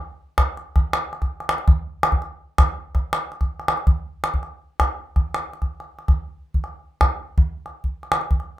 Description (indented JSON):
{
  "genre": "west african traditional",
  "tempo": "109 BPM (dotted quarters)",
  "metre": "12/8",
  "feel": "straight",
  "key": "none",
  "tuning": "none",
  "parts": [
    { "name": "calabash", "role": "percussion", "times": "0.4-8.4 s", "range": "none", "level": "-19 LUFS", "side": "equal", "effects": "none" }
  ],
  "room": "light reverb",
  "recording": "minimal, uncompressed stereo recording",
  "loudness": "-21 LUFS",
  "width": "side -14 dB against mid",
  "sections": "0.0-8.6 A section",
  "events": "none",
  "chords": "none"
}